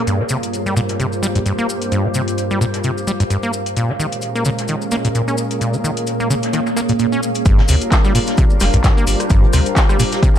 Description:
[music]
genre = acid house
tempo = 130 BPM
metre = 4/4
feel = swing 56% on 16ths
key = unclear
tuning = A4 = 440 Hz
[part]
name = warm analog pad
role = sustained chords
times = 0.0-10.4 s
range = G2 to Bb4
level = -24 LUFS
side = left 1 dB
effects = chorus, sidechain pumping
[part]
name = acid bass, saw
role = riff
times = 0.0-10.3 s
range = G2 to Db4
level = -20 LUFS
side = equal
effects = overdrive, sidechain pumping
[part]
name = granular cloud pad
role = texture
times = 0.0-10.4 s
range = Bb3 to F5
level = -23 LUFS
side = right 2 dB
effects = built-in reverb, sidechain pumping
[part]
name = electro analog drum machine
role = drums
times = 0.1-10.4 s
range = handclaps, hi-hat, rim click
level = -24 LUFS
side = left 2 dB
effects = none
[part]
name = vintage brush drum kit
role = drums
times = 0.1-10.3 s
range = hi-hat, snare drum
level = -32 LUFS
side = left 2 dB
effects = high-pass filter on hats, low-pass filter on hats, high-pass filter on snare, low-pass filter on snare, high-pass filter on room, low-pass filter on room
[part]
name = maracas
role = percussion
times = 0.1-10.4 s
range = none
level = -29 LUFS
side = left 4 dB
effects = none
[part]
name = warm sub bass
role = bass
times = 7.5-9.6 s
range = F1 to D2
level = -17 LUFS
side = equal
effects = tube saturation, sidechain pumping
[part]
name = electronic kick drum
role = drums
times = 7.5-10.3 s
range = none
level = -14 LUFS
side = equal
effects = overdrive
[sound]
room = light reverb, studio reverb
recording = dark, warm production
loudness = -15 LUFS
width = side -10 dB against mid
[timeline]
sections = 0.0-7.5 A section; 7.5-10.4 B section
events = filter sweep on analog synth pad 0.0-7.5; drop 7.5-10.4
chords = 0.1 Gm7; 3.8 Bbm7; 7.5 Gm7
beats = | 0.07 0.53 1.00 1.46 | 1.92 2.38 2.84 3.30 | 3.77 4.23 4.69 5.15 | 5.61 6.07 6.53 7.00 | 7.46 7.92 8.38 8.84 | 9.30 9.77 10.23

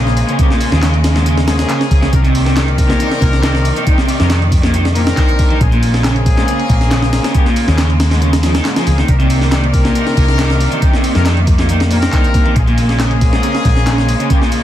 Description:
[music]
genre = breakbeat, breaks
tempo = 138 BPM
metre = 4/4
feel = straight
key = C phrygian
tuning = A4 = 440 Hz
[part]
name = clear symphonic string section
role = sustained chords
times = 0.0-14.6 s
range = C3 to D5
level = -21 LUFS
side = equal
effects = sidechain pumping
[part]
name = raw garage guitar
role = riff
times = 0.0-14.6 s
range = Ab2 to F3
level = -20 LUFS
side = right 1 dB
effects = overdrive, ping-pong delay
[part]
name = mellow brass ensemble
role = stabs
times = 0.0-14.4 s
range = Bb3 to Bb4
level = -22 LUFS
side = left 4 dB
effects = ping-pong delay
[part]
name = hollow-body short-scale picked electric bass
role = bass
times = 0.0-14.1 s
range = Bb1 to F2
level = -14 LUFS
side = equal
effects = none
[part]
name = breakbeat sampler-style drum kit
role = drums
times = 0.1-14.6 s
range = hi-hat, kick drum, snare drum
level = -15 LUFS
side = equal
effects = studio ambience
[part]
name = punchy analog drum machine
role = drums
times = 0.2-14.6 s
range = handclaps, hi-hat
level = -28 LUFS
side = right 1 dB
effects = studio ambience
[sound]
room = little or no reverb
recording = dense, heavily limited modern master, vinyl crackle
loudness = -10 LUFS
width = side -12 dB against mid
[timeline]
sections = 0.0-14.6 A section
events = none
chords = 0.0 Bbm9; 2.1 Cm9; 5.6 Bbm9; 9.1 Cm9; 12.6 Bbm9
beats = | 0.39 0.83 1.26 1.70 | 2.13 2.57 3.00 3.44 | 3.87 4.30 4.74 5.17 | 5.61 6.04 6.48 6.91 | 7.35 7.78 8.22 8.65 | 9.09 9.52 9.96 10.39 | 10.83 11.26 11.70 12.13 | 12.57 13.00 13.44 13.87 | 14.30

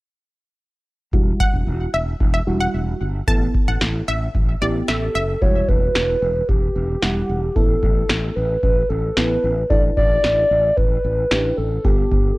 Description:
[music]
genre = synth-pop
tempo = 112 BPM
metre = 4/4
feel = straight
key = unclear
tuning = A4 = 440 Hz
[part]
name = mellow FM electric piano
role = accompaniment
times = 1.1-12.4 s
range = G3 to F#5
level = -26 LUFS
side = right 1 dB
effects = chorus, low-pass filter
[part]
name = fretless electric bass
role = bass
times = 1.1-12.3 s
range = E1 to A1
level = -23 LUFS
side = equal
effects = lush chorus
[part]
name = electro analog drum machine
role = drums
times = 1.1-12.2 s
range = kick drum, snare drum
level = -19 LUFS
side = equal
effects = none
[part]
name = wide unison pluck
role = second line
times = 1.4-5.2 s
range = D5 to A5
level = -25 LUFS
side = equal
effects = analog delay
[part]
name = hollow clarinet-like synth lead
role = melody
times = 4.9-12.4 s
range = G4 to D5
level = -20 LUFS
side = equal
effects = chorus
[sound]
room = digital ambience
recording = dry, gritty hardware recording, transformer saturation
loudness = -16 LUFS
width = side -21 dB against mid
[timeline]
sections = 1.1-5.4 A section; 5.4-12.4 B section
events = filter sweep on FM electric piano 1.1-5.4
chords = 1.1 Emadd9; 3.3 Asus2; 5.4 Emadd9; 7.6 Asus2; 9.7 Dsus2/A; 11.8 Gadd9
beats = | 1.13 1.67 2.21 2.74 | 3.28 3.81 4.35 4.88 | 5.42 5.96 6.49 7.03 | 7.56 8.10 8.63 9.17 | 9.71 10.24 10.78 11.31 | 11.85

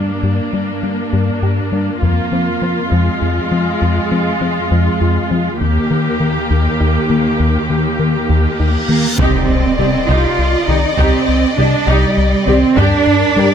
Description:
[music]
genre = cinematic, hybrid orchestral and electronic film score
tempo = 67 BPM (dotted quarters)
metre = 6/8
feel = straight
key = C minor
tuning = A4 = 440 Hz
[part]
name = clear symphonic viola section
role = accompaniment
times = 0.0-13.5 s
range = Ab3 to G4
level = -19 LUFS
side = equal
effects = none
[part]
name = soft round pluck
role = arpeggios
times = 0.0-13.5 s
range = C3 to G4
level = -24 LUFS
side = right 1 dB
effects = chorus, tape echo
[part]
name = round analog bass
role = riff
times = 0.0-13.5 s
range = C2 to G3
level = -16 LUFS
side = left 2 dB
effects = none
[part]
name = warm symphonic cello section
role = bass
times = 0.0-13.5 s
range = Eb2 to F4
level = -18 LUFS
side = right 4 dB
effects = none
[part]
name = taiko ensemble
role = drums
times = 2.0-13.3 s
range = none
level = -22 LUFS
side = equal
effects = none
[part]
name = reverse cymbal and impact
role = sound effects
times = 8.6-11.0 s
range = none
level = -25 LUFS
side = equal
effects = none
[part]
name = warm symphonic violin section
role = second line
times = 9.2-13.5 s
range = Bb4 to Eb5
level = -20 LUFS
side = left 3 dB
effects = none
[part]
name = rich symphonic double bass section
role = bass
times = 9.2-13.4 s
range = C2 to G2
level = -23 LUFS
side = right 3 dB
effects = none
[part]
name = mellow French horn section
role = sustained chords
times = 9.8-13.5 s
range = G4 to D5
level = -23 LUFS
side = left 6 dB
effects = none
[sound]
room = light reverb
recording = close, detailed microphones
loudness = -12 LUFS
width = side -8 dB against mid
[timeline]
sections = 0.0-9.2 A section; 9.2-13.5 B section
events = build-up 0.0-9.2; reverse cymbal 8.6-9.2; impact 9.2-11.0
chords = 0.0 Gm; 2.0 Fm; 5.6 Eb; 9.2 Cmadd9; 12.8 Gm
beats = | 0.24 1.13 | 2.03 2.92 | 3.82 4.71 | 5.61 6.50 | 7.40 8.30 | 9.19 10.09 | 10.98 11.88 | 12.77

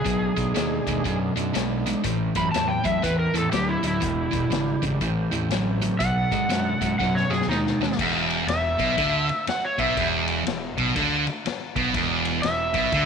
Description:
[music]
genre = blues rock power trio and southern rock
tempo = 121 BPM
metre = 4/4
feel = swing 63% on 8ths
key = E mixolydian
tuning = A4 = 440 Hz
[part]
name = overdriven slide guitar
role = melody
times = 0.0-13.1 s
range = D#4 to B5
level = -26 LUFS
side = equal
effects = slapback echo
[part]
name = tonewheel organ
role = sustained chords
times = 0.0-8.0 s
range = G#3 to D5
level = -36 LUFS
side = right 10 dB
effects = slow rotary speaker, overdrive, chorus vibrato
[part]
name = sludgy distorted guitar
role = riff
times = 0.0-13.1 s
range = E2 to G#3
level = -24 LUFS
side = equal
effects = overdrive
[part]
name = fuzz fingered electric bass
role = bass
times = 0.1-13.1 s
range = E1 to G#2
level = -31 LUFS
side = equal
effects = overdrive
[part]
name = vintage drum kit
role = drums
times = 0.1-13.1 s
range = crash cymbal, hi-hat, kick drum, ride cymbal, snare drum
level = -31 LUFS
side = left 6 dB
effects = none
[sound]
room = moderate plate reverb, RT60 2.8 s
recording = 1960s-style stereo with parts hard left and right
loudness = -21 LUFS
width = side -6 dB against mid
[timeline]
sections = 0.0-8.0 A section; 8.0-13.1 B section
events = drum fill 7.0-8.0; electric slide guitar solo 8.0-13.1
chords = 0.1 B7#9; 2.0 A7#9; 4.0 E7#9; 5.0 A7#9; 6.0 B7#9; 8.0 E7(no3)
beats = | 0.05 0.55 1.05 1.54 | 2.04 2.54 3.03 3.53 | 4.02 4.52 5.01 5.51 | 6.00 6.50 6.99 7.49 | 7.98 8.48 8.97 9.47 | 9.96 10.46 10.95 11.45 | 11.94 12.44 12.93

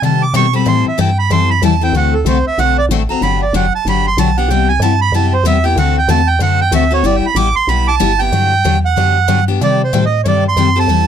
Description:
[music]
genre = acoustic string swing (jazz manouche)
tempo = 188 BPM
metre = 4/4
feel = swing 60% on 8ths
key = G major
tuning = A4 = 437 Hz
[part]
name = accordion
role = melody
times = 0.0-11.1 s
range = A4 to D6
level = -15 LUFS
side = right 7 dB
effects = none
[part]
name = picked steel-string acoustic guitar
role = accompaniment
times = 0.0-11.1 s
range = C3 to A4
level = -16 LUFS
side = left 10 dB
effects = none
[part]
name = woody FM bass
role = bass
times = 0.0-11.1 s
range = F#1 to C3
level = -15 LUFS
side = equal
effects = none
[sound]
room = light reverb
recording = close, detailed microphones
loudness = -11 LUFS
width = side -8 dB against mid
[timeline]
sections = 0.0-8.3 A section; 8.3-11.1 B section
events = accordion solo 0.0-8.3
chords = 0.0 Cm6; 0.7 Am7; 1.9 D7; 3.2 Gmaj7; 4.5 Cmaj7; 5.8 D7; 7.0 G6; 8.3 Gmaj7; 9.6 Cm6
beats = 0.02 0.34 | 0.66 0.98 1.30 1.62 | 1.94 2.26 2.58 2.90 | 3.22 3.54 3.86 4.18 | 4.50 4.82 5.13 5.45 | 5.77 6.09 6.41 6.73 | 7.05 7.37 7.69 8.01 | 8.32 8.64 8.96 9.29 | 9.61 9.93 10.24 10.56 | 10.88

